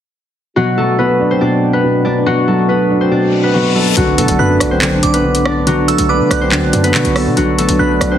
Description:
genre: hip hop, drill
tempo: 141 BPM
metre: 4/4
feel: half-time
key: B phrygian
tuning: A4 = 440 Hz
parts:
  - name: concert harp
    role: melody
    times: 0.6-8.2 s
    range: F#3 to D5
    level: -14 LUFS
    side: left 1 dB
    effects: low-pass filter
  - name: dark concert grand piano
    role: accompaniment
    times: 0.6-8.2 s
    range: B2 to D5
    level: -17 LUFS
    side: right 1 dB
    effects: low-pass filter
  - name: dark French horn section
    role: sustained chords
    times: 0.6-8.2 s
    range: B2 to F#4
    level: -22 LUFS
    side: right 2 dB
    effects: none
  - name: reverse cymbal and impact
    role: sound effects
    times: 3.3-5.7 s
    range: none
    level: -22 LUFS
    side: left 2 dB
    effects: none
  - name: hard-hitting 808-style bass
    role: bass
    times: 4.0-8.2 s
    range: A1 to D3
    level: -19 LUFS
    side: equal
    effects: none
  - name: drill drum kit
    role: drums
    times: 4.0-8.1 s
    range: handclaps, hi-hat, rim click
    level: -18 LUFS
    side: equal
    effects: vintage 12-bit sampler grit
  - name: glassy synth bell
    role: second line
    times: 4.4-8.2 s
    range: D6 to F#6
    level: -21 LUFS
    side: right 5 dB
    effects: chorus, phaser, tape echo
room: light reverb, studio ambience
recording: heavily compressed radio sound, multiband compression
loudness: -11 LUFS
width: side -10 dB against mid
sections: 0.6-4.0 A section; 4.0-8.2 B section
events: reverse cymbal 3.3-4.0; impact 4.0-5.7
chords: 0.6 Bm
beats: | 0.56 0.99 1.41 1.84 | 2.26 2.69 3.12 3.54 | 3.97 4.39 4.82 5.24 | 5.67 6.09 6.52 6.94 | 7.37 7.79

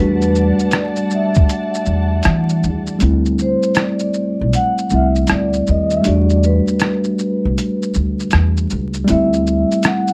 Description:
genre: lo-fi hip hop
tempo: 79 BPM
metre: 4/4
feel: swing 66% on 16ths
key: unclear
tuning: A4 = 439 Hz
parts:
  - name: vibraphone with soft mallets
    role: melody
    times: 0.0-10.1 s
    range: B4 to F#5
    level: -24 LUFS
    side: equal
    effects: low-pass filter, analog delay
  - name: tine electric piano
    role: accompaniment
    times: 0.0-10.1 s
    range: G3 to F#4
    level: -20 LUFS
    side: equal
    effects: cassette tape, low-pass filter
  - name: dark studio string section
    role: sustained chords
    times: 0.0-3.0 s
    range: G3 to A5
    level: -29 LUFS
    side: equal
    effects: low-pass filter
  - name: upright bass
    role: bass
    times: 0.0-9.6 s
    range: B1 to E3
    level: -20 LUFS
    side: equal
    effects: none
  - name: lo-fi sampler-style drum kit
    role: drums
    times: 0.2-10.1 s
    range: hi-hat, kick drum, rim click, shaker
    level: -21 LUFS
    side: equal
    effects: none
  - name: finger snap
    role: percussion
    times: 0.7-2.5 s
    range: none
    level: -32 LUFS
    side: equal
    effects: none
room: moderate studio reverb, RT60 0.6 s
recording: vinyl crackle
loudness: -16 LUFS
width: mono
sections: 0.0-3.0 A section; 3.0-10.1 B section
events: break 1.5-3.0; kick muted 3.0-10.1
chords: 0.0 Em11; 3.0 D9sus4; 6.0 Em11; 9.1 D9sus4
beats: 0.73 1.49 2.25 | 3.01 3.77 4.53 5.29 | 6.05 6.81 7.57 8.33 | 9.09 9.85

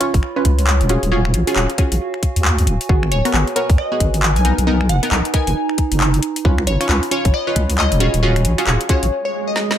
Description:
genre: UK garage, two-step garage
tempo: 135 BPM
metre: 4/4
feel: swing 61% on 16ths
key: Eb minor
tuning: A4 = 440 Hz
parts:
  - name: punchy chord stab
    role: stabs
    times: 0.0-9.1 s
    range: Cb4 to Db5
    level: -21 LUFS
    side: equal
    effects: chorus, dub echo
  - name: garage drum kit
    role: drums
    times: 0.0-9.8 s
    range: finger snaps, handclaps, hi-hat, snare drum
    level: -22 LUFS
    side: left 1 dB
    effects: none
  - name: warbly tape-like pad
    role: texture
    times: 0.0-9.1 s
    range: D#4 to Cb6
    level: -26 LUFS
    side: right 3 dB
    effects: chorus, built-in reverb, sidechain pumping
  - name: deep soft wobble bass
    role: bass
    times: 0.1-9.1 s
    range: Eb1 to Eb2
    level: -16 LUFS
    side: equal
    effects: chorus
  - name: electronic kick drum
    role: drums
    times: 0.1-9.0 s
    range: none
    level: -16 LUFS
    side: equal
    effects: none
  - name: glassy wavetable pluck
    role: melody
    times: 3.1-9.6 s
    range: Db5 to Ab5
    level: -24 LUFS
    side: left 1 dB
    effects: chorus, dub echo
  - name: swell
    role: sound effects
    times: 9.2-9.8 s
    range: none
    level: -23 LUFS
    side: right 4 dB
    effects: none
room: light reverb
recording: none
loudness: -14 LUFS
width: side -10 dB against mid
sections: 0.0-9.8 A section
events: break 9.1-9.8; swell 9.2-9.8; drum fill 9.6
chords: 0.0 Db7; 0.9 Ebm11; 2.9 Abm7; 4.4 Bmaj7; 6.2 Db7; 8.0 Ebm11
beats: 0.23 0.67 | 1.12 1.56 2.00 2.45 | 2.89 3.34 3.78 4.23 | 4.67 5.12 5.56 6.00 | 6.45 6.89 7.34 7.78 | 8.23 8.67 9.12 9.56

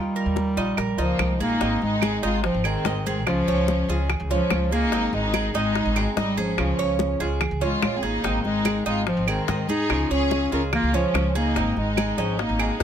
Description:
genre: latin, Cuban son and guajira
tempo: 145 BPM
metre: 4/4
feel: straight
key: Ab major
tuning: A4 = 440 Hz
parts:
  - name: mellow bass clarinet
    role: melody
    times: 0.0-12.7 s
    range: Eb3 to Eb4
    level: -25 LUFS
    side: left 1 dB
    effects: none
  - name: flamenco guitar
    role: accompaniment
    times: 0.0-12.8 s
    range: Db3 to Ab4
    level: -31 LUFS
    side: left 2 dB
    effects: none
  - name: upright bass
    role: bass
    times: 0.0-12.8 s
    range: Ab1 to Ab2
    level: -27 LUFS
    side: equal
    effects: none
  - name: Cuban tres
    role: arpeggios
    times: 0.2-12.8 s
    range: Db4 to Eb5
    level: -30 LUFS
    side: right 8 dB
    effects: none
  - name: bongos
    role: percussion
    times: 0.2-12.8 s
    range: none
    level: -30 LUFS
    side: left 11 dB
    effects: none
  - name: congas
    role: percussion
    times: 0.2-12.8 s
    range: none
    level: -32 LUFS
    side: left 2 dB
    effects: none
  - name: claves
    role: percussion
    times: 0.8-12.8 s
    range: none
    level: -30 LUFS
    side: right 9 dB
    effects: none
  - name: warm symphonic violin section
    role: second line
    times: 1.0-12.7 s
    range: Bb3 to Bb4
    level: -30 LUFS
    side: right 1 dB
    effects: none
room: light reverb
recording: close, detailed microphones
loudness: -21 LUFS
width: side -9 dB against mid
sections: 0.0-1.6 A section; 1.6-12.8 B section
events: none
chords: 0.0 Ebadd9; 1.6 Ab; 3.3 Db; 4.9 Ab; 6.6 Db; 8.2 Ab; 9.9 Db; 11.6 Ab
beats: 0.37 0.78 1.20 | 1.61 2.02 2.44 2.85 | 3.27 3.68 4.10 4.51 | 4.92 5.34 5.75 6.17 | 6.58 7.00 7.41 7.83 | 8.24 8.66 9.07 9.49 | 9.90 10.32 10.73 11.15 | 11.56 11.97 12.39 12.80

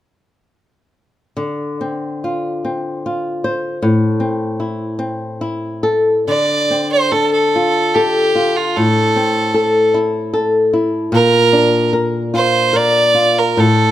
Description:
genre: celtic folk, Celtic slow air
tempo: 74 BPM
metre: 3/4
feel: uneven beats, rubato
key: D minor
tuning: A4 = 440 Hz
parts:
  - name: flamenco guitar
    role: accompaniment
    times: 1.4-13.9 s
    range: A2 to C5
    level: -16 LUFS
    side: left 2 dB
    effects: none
  - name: clear fiddle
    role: melody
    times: 6.3-13.9 s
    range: F4 to D5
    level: -14 LUFS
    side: right 2 dB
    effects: none
room: light reverb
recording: close, detailed microphones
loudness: -13 LUFS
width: side -12 dB against mid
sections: 1.4-6.3 A section; 6.3-13.9 B section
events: none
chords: 1.4 Dm7; 3.8 Am; 6.3 Dm7; 8.8 Am; 11.1 Bb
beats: | 1.39 2.23 3.06 | 3.84 4.61 5.42 | 6.29 7.14 7.97 | 8.78 9.57 10.36 | 11.15 11.95 12.76 | 13.59

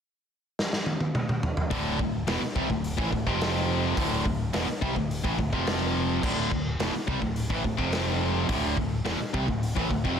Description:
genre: hard rock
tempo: 106 BPM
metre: 4/4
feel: straight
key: D minor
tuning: A4 = 440 Hz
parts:
  - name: raw garage drum kit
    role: drums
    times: 0.6-10.2 s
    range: crash cymbal, hi-hat, kick drum, snare drum, toms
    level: -30 LUFS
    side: equal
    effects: none
  - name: cranked stack guitar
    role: riff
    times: 1.7-10.2 s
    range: D2 to G3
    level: -30 LUFS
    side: right 12 dB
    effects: overdrive
  - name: distorted electric guitar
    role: riff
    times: 1.7-10.2 s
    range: D2 to G3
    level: -30 LUFS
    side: left 10 dB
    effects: overdrive
  - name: fingered electric bass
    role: bass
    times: 1.7-10.2 s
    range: D1 to C2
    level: -32 LUFS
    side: equal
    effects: none
room: small room reverb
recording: dense, heavily limited modern master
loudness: -25 LUFS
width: side -8 dB against mid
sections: 0.0-1.7 A section; 1.7-10.2 B section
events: drum fill 0.6-1.7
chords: 0.0 N.C.; 1.7 D5; 3.3 F5; 4.0 D5; 5.5 F5; 6.2 D5; 7.8 F5; 8.5 Dm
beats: 0.02 0.58 1.15 | 1.71 2.28 2.84 3.41 | 3.97 4.54 5.10 5.67 | 6.23 6.79 7.36 7.92 | 8.49 9.05 9.62

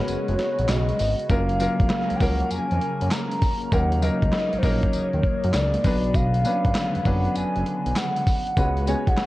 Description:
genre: R&B, new jack swing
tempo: 99 BPM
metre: 4/4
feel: swing 66% on 16ths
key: F# major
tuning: A4 = 440 Hz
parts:
  - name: hollow clarinet-like synth lead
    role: melody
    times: 0.0-9.3 s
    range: B#4 to A#5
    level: -27 LUFS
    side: equal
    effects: chorus, plate reverb
  - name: clear concert grand piano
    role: accompaniment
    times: 0.0-9.3 s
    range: E#3 to C#5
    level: -27 LUFS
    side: left 1 dB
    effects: none
  - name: phased analog pad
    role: sustained chords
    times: 0.0-9.3 s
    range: C#3 to F#4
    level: -32 LUFS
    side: left 1 dB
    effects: phaser, chorus
  - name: fat analog bass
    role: bass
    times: 0.1-9.2 s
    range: E#1 to F#2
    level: -25 LUFS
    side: equal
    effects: none
  - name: dusty soul sampler-style drum kit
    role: drums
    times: 0.1-9.3 s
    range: handclaps, hi-hat, kick drum, snare drum, tambourine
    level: -24 LUFS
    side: equal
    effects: gated reverb
room: light reverb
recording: cassette tape, lossy compression artefacts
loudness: -20 LUFS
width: side -17 dB against mid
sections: 0.0-9.3 A section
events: break 0.0-1.3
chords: 0.0 C#7sus4; 1.3 F#maj7; 3.7 D#m7; 5.8 Bmadd9; 8.6 C#7sus4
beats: 0.08 0.69 | 1.30 1.90 2.51 3.11 | 3.72 4.33 4.93 5.54 | 6.14 6.75 7.36 7.96 | 8.57 9.18

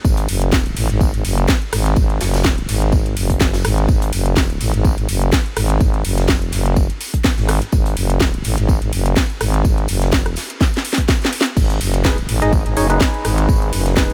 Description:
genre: bass house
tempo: 125 BPM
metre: 4/4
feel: swing 55% on 16ths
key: G# phrygian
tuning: A4 = 439 Hz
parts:
  - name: growling FM bass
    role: bass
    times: 0.0-14.1 s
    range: F#1 to A1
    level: -20 LUFS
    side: equal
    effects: sidechain pumping
  - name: electronic kick drum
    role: drums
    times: 0.0-14.1 s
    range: none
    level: -19 LUFS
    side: equal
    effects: none
  - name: big rock drum kit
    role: drums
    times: 0.1-14.1 s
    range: hi-hat, snare drum, tambourine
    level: -34 LUFS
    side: equal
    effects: high-pass filter on hats, high-pass filter on snare, high-pass filter on perc, high-pass filter on room
  - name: house drum kit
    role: drums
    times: 0.2-14.1 s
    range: crash cymbal, hi-hat, rim click, snare drum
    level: -24 LUFS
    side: equal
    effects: none
  - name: percussive organ stab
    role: stabs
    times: 12.0-14.1 s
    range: D#4 to D#5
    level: -23 LUFS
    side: equal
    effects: chorus, sidechain pumping, delay
room: little or no reverb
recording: none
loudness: -17 LUFS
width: mono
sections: 0.0-14.1 A section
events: drum fill 10.6-11.6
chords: 0.0 G#m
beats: | 0.05 0.53 1.01 1.49 | 1.97 2.45 2.93 3.41 | 3.89 4.37 4.85 5.33 | 5.81 6.29 6.77 7.25 | 7.73 8.21 8.69 9.17 | 9.65 10.13 10.61 11.09 | 11.57 12.05 12.53 13.01 | 13.49 13.97

